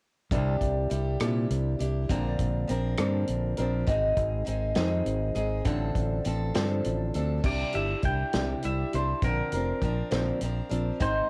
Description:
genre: folk rock and heartland rock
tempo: 67 BPM (dotted quarters)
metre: 6/8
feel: straight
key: C mixolydian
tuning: A4 = 443 Hz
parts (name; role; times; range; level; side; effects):
- picked acoustic archtop guitar; accompaniment; 0.3-11.3 s; Ab2 to Bb4; -32 LUFS; equal; none
- modern bright fingered electric bass; bass; 0.3-11.2 s; F1 to Bb2; -31 LUFS; equal; none
- natural country drum kit; drums; 0.3-11.1 s; crash cymbal, hi-hat, kick drum, rim click, snare drum; -34 LUFS; equal; cassette tape
- clean electric guitar; melody; 7.5-11.3 s; Bb4 to G5; -35 LUFS; equal; spring reverb, cassette tape
room: light reverb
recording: home recording on cassette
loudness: -28 LUFS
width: mono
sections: 0.3-7.4 A section; 7.4-11.3 B section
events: none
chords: 0.3 Cadd9; 2.1 Bbadd9; 3.9 Ab; 5.7 F6/A; 7.4 Cadd9; 9.2 Bbadd9

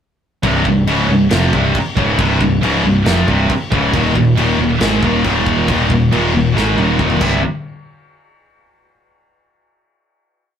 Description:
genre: heavy metal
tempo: 137 BPM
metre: 4/4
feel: straight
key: C minor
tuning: A4 = 445 Hz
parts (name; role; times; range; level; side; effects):
- heavy high-gain guitar; riff; 0.4-7.4 s; C2 to Ab3; -18 LUFS; right 6 dB; distortion
- scooped high-gain guitar; riff; 0.4-7.4 s; C2 to Ab3; -17 LUFS; left 5 dB; distortion
- tight distorted guitar; riff; 0.4-7.4 s; C2 to E4; -20 LUFS; equal; distortion
- modern bright picked electric bass; bass; 0.4-7.4 s; C1 to Ab1; -19 LUFS; equal; none
- modern studio drum kit; drums; 0.4-7.3 s; crash cymbal, kick drum, snare drum, toms; -21 LUFS; equal; none
room: moderate studio reverb, RT60 0.5 s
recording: rough rehearsal-room recording, tube saturation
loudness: -12 LUFS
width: side -8 dB against mid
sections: 0.4-7.4 riff; 7.4-9.2 final hit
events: drum fill 6.6-7.4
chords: 0.4 C5; 3.9 Eb5; 7.2 C; 7.4 N.C.

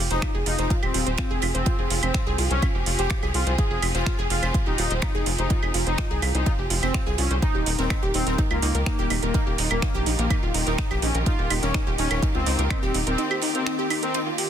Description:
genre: melodic techno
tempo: 125 BPM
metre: 4/4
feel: straight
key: F minor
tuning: A4 = 439 Hz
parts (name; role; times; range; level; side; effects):
- clear symphonic string section; sustained chords; 0.0-14.5 s; Eb3 to Ab4; -33 LUFS; equal; sidechain pumping
- wide unison pluck; arpeggios; 0.0-14.5 s; Eb4 to C5; -29 LUFS; right 1 dB; sidechain pumping, ping-pong delay
- tight sequencer bass; bass; 0.0-13.2 s; Eb1 to Db2; -26 LUFS; equal; sidechain pumping
- analog synth brass; melody; 0.1-14.2 s; Bb3 to Ab4; -29 LUFS; left 2 dB; chorus, sidechain pumping, digital delay
- house drum kit; drums; 0.1-14.5 s; claves, finger snaps, hi-hat; -29 LUFS; right 4 dB; soft clipping on snare
- open jazz drum kit; drums; 0.1-14.5 s; ride cymbal, snare drum; -38 LUFS; right 3 dB; high-pass filter on cymbals, high-pass filter on snare, high-pass filter on room
- electronic kick drum; drums; 0.2-12.8 s; none; -25 LUFS; equal; none
room: small room ambience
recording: dense, heavily limited modern master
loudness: -21 LUFS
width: side -9 dB against mid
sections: 0.0-14.5 A section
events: none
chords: 0.0 Fmadd9; 7.4 Ebadd9

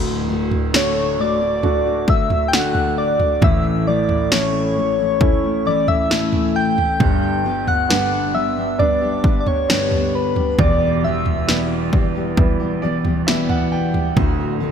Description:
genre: pop ballad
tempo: 67 BPM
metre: 4/4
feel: straight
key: D major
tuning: A4 = 440 Hz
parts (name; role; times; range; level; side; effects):
- clear concert grand piano; accompaniment; 0.0-14.7 s; D1 to G5; -22 LUFS; right 4 dB; analog chorus
- fingerpicked steel-string acoustic guitar; arpeggios; 0.0-14.7 s; E2 to G4; -23 LUFS; left 6 dB; lush chorus
- punchy analog drum machine; drums; 0.5-14.4 s; kick drum, snare drum, toms; -20 LUFS; equal; none
- soft struck synth lead; melody; 0.8-11.9 s; B4 to G5; -20 LUFS; left 1 dB; chorus
room: moderate plate reverb, RT60 2.6 s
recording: bright 1980s-style digital production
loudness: -16 LUFS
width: side -8 dB against mid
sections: 0.0-14.7 A section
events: grand piano fill 12.4-14.2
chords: 0.0 D; 3.4 A; 7.0 G; 10.6 Em; 14.2 D

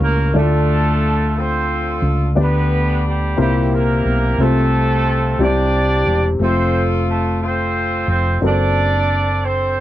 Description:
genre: slow gospel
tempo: 59 BPM (dotted quarters)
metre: 6/8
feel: straight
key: F major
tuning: A4 = 440 Hz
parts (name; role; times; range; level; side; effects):
- mellow horn section; melody; 0.0-9.8 s; G3 to D5; -19 LUFS; right 2 dB; none
- warm upright piano; accompaniment; 0.0-9.8 s; A2 to A5; -20 LUFS; left 3 dB; none
- hollow-body short-scale fingered electric bass; bass; 0.0-9.8 s; E1 to D2; -18 LUFS; equal; none
room: little or no reverb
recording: dry, close 1970s-style studio recording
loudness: -14 LUFS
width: side -13 dB against mid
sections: 0.0-9.8 A section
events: none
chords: 0.3 Dm; 2.4 G/D; 3.4 C7; 4.4 F/C; 5.4 C; 6.4 F; 8.4 D7/F#

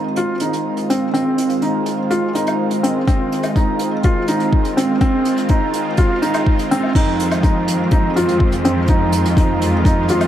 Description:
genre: piano and strings electronica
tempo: 124 BPM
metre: 4/4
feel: straight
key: F minor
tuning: A4 = 441 Hz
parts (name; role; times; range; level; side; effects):
- lush unison pad; sustained chords; 0.0-10.3 s; Eb3 to F4; -21 LUFS; equal; chorus, sidechain pumping, shimmer reverb
- felt-muted upright piano; riff; 0.0-10.3 s; C4 to F4; -18 LUFS; right 1 dB; tape echo, shimmer reverb
- vintage brush drum kit; drums; 0.2-10.3 s; crash cymbal, hi-hat, woodblock; -28 LUFS; right 1 dB; none
- electronic kick drum; drums; 3.1-9.9 s; none; -16 LUFS; equal; none
- rich symphonic cello section; bass; 7.0-10.3 s; F2; -20 LUFS; equal; sidechain pumping
room: moderate scoring stage reverb, RT60 1.5 s, small room reverb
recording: none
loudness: -14 LUFS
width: side -11 dB against mid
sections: 0.0-6.9 A section; 6.9-10.3 B section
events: build-up 0.0-6.9; filter sweep on analog synth pad 0.0-6.9; drop 6.9-10.3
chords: 0.0 Fm7

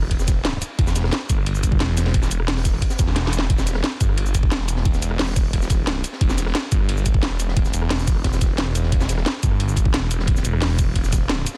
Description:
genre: dark technical drum and bass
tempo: 177 BPM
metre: 4/4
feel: straight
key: E minor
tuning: A4 = 440 Hz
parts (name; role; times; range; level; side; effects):
- phased detuned saw bass; bass; 0.0-11.5 s; E1 to G1; -25 LUFS; equal; phaser, tube saturation
- drum and bass drum kit; drums; 0.0-11.5 s; hi-hat, rim click, shaker, snare drum; -28 LUFS; equal; none
- crunchy breakbeat drum kit; drums; 0.1-11.6 s; hi-hat, ride cymbal, snare drum; -35 LUFS; equal; high-pass filter on cymbals, high-pass filter on hats, high-pass filter on snare, high-pass filter on room
- electronic kick drum; drums; 0.1-11.2 s; none; -22 LUFS; equal; overdrive
room: little or no reverb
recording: dense, heavily limited modern master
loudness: -21 LUFS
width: mono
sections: 0.0-11.6 A section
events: drum fill 3.2-3.5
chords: none

